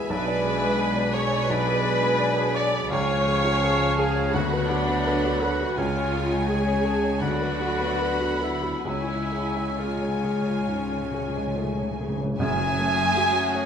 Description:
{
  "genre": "classical, romantic movement for piano and orchestra",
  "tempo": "64-87 BPM",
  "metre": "4/4",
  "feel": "rubato",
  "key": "unclear",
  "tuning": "A4 = 439 Hz",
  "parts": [
    { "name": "warm baby grand piano", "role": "melody", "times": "0.0-13.7 s", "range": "B1 to D5", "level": "-27 LUFS", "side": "left 1 dB", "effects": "none" },
    { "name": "warm studio violin section", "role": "melody", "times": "0.0-13.7 s", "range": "G#5 to B5", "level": "-34 LUFS", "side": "left 2 dB", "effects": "none" },
    { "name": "bright clarinet", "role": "second line", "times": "0.0-12.0 s", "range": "C#5 to F#5", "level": "-35 LUFS", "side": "equal", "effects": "none" },
    { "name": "flute section", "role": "second line", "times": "0.0-13.7 s", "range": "G#5 to B5", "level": "-33 LUFS", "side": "equal", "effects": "none" },
    { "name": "rich studio violin section", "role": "second line", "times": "0.0-13.7 s", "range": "C#5 to G#5", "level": "-36 LUFS", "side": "left 3 dB", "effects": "none" },
    { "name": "warm French horn section", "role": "sustained chords", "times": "0.0-13.7 s", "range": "E#3 to D4", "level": "-32 LUFS", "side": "left 4 dB", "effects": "none" },
    { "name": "rich symphonic cello section", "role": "bass", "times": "0.0-13.0 s", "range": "F#2 to D3", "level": "-33 LUFS", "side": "right 4 dB", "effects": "none" },
    { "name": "warm studio double bass section", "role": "bass", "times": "0.0-13.0 s", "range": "F#1 to D2", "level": "-34 LUFS", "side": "right 4 dB", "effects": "none" },
    { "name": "warm oboe", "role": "second line", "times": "0.1-13.7 s", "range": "G#4 to D6", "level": "-32 LUFS", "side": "right 1 dB", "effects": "none" },
    { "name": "rich studio viola section", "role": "accompaniment", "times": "0.1-13.7 s", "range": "C#3 to D5", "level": "-28 LUFS", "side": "right 1 dB", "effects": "none" },
    { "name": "timpani", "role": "percussion", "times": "2.9-13.5 s", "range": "F#2 to C#3", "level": "-35 LUFS", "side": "equal", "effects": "none" }
  ],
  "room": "wet scoring stage reverb, RT60 1.6 s",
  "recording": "none",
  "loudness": "-22 LUFS",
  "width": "side -7 dB against mid",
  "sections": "0.0-12.4 A section; 12.4-13.7 B section",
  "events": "timpani fill 8.9-12.4",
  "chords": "0.1 G#dim/B; 2.9 C#; 4.3 Bm/D; 5.8 C#; 7.2 Bm/D; 8.9 C#; 12.4 F#m"
}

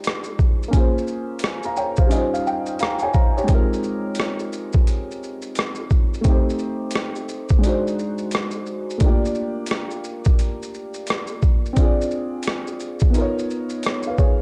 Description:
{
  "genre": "lo-fi hip hop",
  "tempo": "87 BPM",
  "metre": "4/4",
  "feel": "swing 64% on 16ths",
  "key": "unclear",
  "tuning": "A4 = 440 Hz",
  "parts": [
    { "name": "felt-muted upright piano", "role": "accompaniment", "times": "0.0-14.4 s", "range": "G3 to Bb5", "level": "-26 LUFS", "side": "equal", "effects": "cassette tape, low-pass filter" },
    { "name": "boom bap sampler-style drum kit", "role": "drums", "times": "0.0-14.4 s", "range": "hi-hat, kick drum, rim click, shaker", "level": "-22 LUFS", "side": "equal", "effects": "overdrive" }
  ],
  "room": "digital ambience",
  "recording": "dry, gritty hardware recording, cassette tape",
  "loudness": "-21 LUFS",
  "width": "mono",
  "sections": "0.0-14.4 A section",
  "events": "none",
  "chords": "0.0 Fm9; 0.7 Bbm9; 2.1 Eb13; 3.5 Ab69; 6.2 Am7b5; 7.6 Ab7#11; 9.0 Gm7; 11.8 Dm7b5; 13.1 Db13"
}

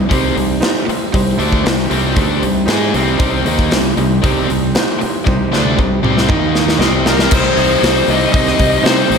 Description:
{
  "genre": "classic rock",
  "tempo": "116 BPM",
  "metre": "4/4",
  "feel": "straight",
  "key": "C dorian",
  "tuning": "A4 = 439 Hz",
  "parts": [
    { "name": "bright upright piano", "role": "accompaniment", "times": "0.0-9.2 s", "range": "Eb4 to Eb5", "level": "-22 LUFS", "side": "right 3 dB", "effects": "slapback echo" },
    { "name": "overdriven electric guitar", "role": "riff", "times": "0.0-9.2 s", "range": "C3 to Ab4", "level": "-20 LUFS", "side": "right 10 dB", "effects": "slapback echo" },
    { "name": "tight distorted guitar", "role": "riff", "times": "0.0-9.2 s", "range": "C3 to Ab4", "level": "-19 LUFS", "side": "left 11 dB", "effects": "distortion" },
    { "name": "fuzz fingered electric bass", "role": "bass", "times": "0.0-9.2 s", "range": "A1 to C3", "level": "-20 LUFS", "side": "equal", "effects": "overdrive" },
    { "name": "big rock drum kit", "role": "drums", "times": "0.1-9.2 s", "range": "crash cymbal, hi-hat, kick drum, snare drum, toms", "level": "-16 LUFS", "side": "equal", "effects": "none" },
    { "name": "smooth overdriven lead guitar", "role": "melody", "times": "7.1-9.2 s", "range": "Bb4 to Eb5", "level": "-16 LUFS", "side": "left 2 dB", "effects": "slapback echo" },
    { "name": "string machine, full ensemble", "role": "sustained chords", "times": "7.3-9.2 s", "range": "C4 to C5", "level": "-27 LUFS", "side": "left 1 dB", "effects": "none" }
  ],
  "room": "moderate lush hall reverb, RT60 2.0 s",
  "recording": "big arena sound",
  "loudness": "-12 LUFS",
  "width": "side -6 dB against mid",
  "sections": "0.0-7.3 A section; 7.3-9.2 B section",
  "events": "drum fill 5.3-7.3",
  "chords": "0.0 Cm; 6.3 Eb5; 6.8 Cm"
}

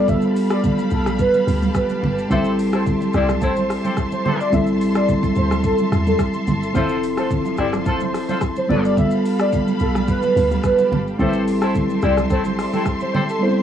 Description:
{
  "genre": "afrobeats",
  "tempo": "108 BPM",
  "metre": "4/4",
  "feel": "straight",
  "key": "A minor",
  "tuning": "A4 = 442 Hz",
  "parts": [
    { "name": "warm velvety synth lead", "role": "melody", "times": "0.0-13.5 s", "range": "A4 to E5", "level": "-23 LUFS", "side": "equal", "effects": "chorus, cassette tape, analog delay" },
    { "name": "mellow tine electric piano", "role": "accompaniment", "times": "0.0-13.6 s", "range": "F3 to A4", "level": "-21 LUFS", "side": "right 2 dB", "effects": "none" },
    { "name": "warm studio string section", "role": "sustained chords", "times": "0.0-13.6 s", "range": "F3 to C6", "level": "-29 LUFS", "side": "left 2 dB", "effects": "none" },
    { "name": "deep log drum bass", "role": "bass", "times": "0.0-12.6 s", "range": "F1 to E2", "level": "-24 LUFS", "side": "equal", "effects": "none" },
    { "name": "downlifter", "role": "sound effects", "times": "0.4-2.3 s", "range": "none", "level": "barely audible", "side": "none", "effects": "none" },
    { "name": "afro-pop drum kit", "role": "drums", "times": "0.1-13.4 s", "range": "hi-hat, kick drum, rim click, shaker", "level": "-25 LUFS", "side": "left 1 dB", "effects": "cassette tape" },
    { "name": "congas", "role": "percussion", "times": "0.1-13.3 s", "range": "none", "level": "-25 LUFS", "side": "equal", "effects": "none" },
    { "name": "warm horn section", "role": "second line", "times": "2.3-13.2 s", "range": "G3 to D5", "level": "-24 LUFS", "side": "left 2 dB", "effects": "none" }
  ],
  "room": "light reverb",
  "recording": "home recording on cassette",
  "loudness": "-16 LUFS",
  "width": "side -9 dB against mid",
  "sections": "0.0-13.6 A section",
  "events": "drums muted 13.4",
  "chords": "0.0 G9; 2.3 Am7; 6.8 Fmaj7; 8.7 G9; 11.2 Am7"
}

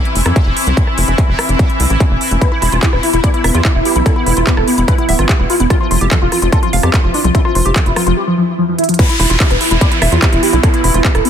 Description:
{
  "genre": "psychedelic trance",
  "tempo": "146 BPM",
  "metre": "4/4",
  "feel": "straight",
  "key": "unclear",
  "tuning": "A4 = 442 Hz",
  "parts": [
    { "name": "bubbling stepped-filter texture", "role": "sustained chords", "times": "0.0-11.3 s", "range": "E3 to E4", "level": "-22 LUFS", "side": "equal", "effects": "chorus, built-in reverb, sidechain pumping" },
    { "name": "warbly tape-like pad", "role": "texture", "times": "0.0-11.3 s", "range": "B3 to C6", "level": "-22 LUFS", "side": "right 1 dB", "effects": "chorus, built-in reverb, sidechain pumping" },
    { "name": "techno drum kit", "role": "drums", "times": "0.1-11.3 s", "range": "crash cymbal, handclaps, hi-hat, rim click", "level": "-19 LUFS", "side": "right 1 dB", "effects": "small room ambience, soft clipping on snare" },
    { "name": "tight sequencer bass", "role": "bass", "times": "0.2-11.2 s", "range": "D1 to F2", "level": "-15 LUFS", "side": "equal", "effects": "tube saturation" },
    { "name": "electronic kick drum", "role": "drums", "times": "0.4-11.1 s", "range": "none", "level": "-13 LUFS", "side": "equal", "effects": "distortion, overdrive, small room ambience" },
    { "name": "wide unison lead", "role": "melody", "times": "2.4-11.3 s", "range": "F3 to D5", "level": "-18 LUFS", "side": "equal", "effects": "phaser, sidechain pumping, ping-pong delay" },
    { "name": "woody wave-folded pluck", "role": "riff", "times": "2.4-11.3 s", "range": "E4 to F5", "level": "-20 LUFS", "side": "moving between left 6 dB and right 3 dB", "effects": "chorus, auto-pan, sidechain pumping, ping-pong delay" },
    { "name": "downlifter", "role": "sound effects", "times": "9.0-11.3 s", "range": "none", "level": "-19 LUFS", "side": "right 1 dB", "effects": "none" }
  ],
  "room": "light reverb, digital ambience",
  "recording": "dense, heavily limited modern master",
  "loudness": "-10 LUFS",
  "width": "side -8 dB against mid",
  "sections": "0.0-9.0 A section; 9.0-11.3 B section",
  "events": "drum fill 8.8; drop 9.0-11.3",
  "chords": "0.0 F5; 2.4 E5; 5.7 F5; 9.0 E5"
}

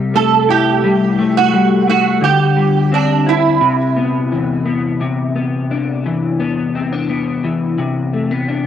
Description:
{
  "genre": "indie pop",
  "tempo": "86 BPM",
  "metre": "4/4",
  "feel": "straight",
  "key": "C lydian",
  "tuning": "A4 = 440 Hz",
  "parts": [
    { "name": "electric guitar through a small old amp", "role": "accompaniment", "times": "0.0-8.7 s", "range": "C3 to E4", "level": "-15 LUFS", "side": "left 3 dB", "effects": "analog chorus, vibrato effect, cassette tape" },
    { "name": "metal-body resonator slide guitar", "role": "melody", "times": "0.2-3.9 s", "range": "D4 to A4", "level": "-15 LUFS", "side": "right 10 dB", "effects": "ensemble chorus, cassette tape, tape echo" }
  ],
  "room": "moderate spring reverb, RT60 2.5 s",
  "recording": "home recording on cassette",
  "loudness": "-13 LUFS",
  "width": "side -9 dB against mid",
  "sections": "0.0-5.0 A section; 5.0-8.7 B section",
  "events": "none",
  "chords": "0.0 C6; 2.2 D9sus4; 3.6 Cmaj7; 5.0 Cmaj9"
}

